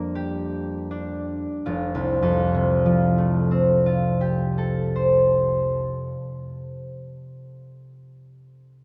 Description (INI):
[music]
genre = classical, solo harp piece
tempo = 42 BPM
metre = 3/4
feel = rubato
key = F major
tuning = A4 = 440 Hz
[part]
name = concert harp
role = solo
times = 0.0-7.4 s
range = F1 to D5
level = -23 LUFS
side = equal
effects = none
[sound]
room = wet church reverb, RT60 3.2 s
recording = none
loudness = -22 LUFS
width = mono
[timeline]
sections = 0.0-1.7 A section; 1.7-6.0 B section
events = slowing down 0.0-1.7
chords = 0.0 C11/F; 1.7 Fadd9